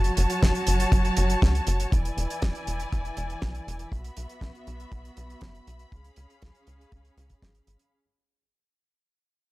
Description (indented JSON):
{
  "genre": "italo disco",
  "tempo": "120 BPM",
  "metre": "4/4",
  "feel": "straight",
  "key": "unclear",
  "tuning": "A4 = 440 Hz",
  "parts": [
    { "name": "rich studio string section", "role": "sustained chords", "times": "0.0-7.9 s", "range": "E3 to B5", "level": "-31 LUFS", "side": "equal", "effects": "none" },
    { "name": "tight sequencer bass", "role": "bass", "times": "0.0-7.8 s", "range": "E1 to C#2", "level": "-27 LUFS", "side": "equal", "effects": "none" },
    { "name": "damped 70s drum kit", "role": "drums", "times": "0.0-7.9 s", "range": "hi-hat, snare drum", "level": "-32 LUFS", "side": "right 1 dB", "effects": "none" },
    { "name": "kick drum", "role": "drums", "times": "0.4-7.5 s", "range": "none", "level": "-24 LUFS", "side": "equal", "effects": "none" }
  ],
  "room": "studio ambience",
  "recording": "dry, gritty hardware recording",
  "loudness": "-23 LUFS",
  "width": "side -19 dB against mid",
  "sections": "0.0-7.9 A section",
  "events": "fade-out 0.0-7.9",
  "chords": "0.0 F#m; 1.9 E7; 3.9 Bsus4; 5.9 C#7",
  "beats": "0.42 0.92 1.42 | 1.92 2.42 2.92 3.42 | 3.92 4.42 4.92 5.42 | 5.92 6.42 6.92 7.42"
}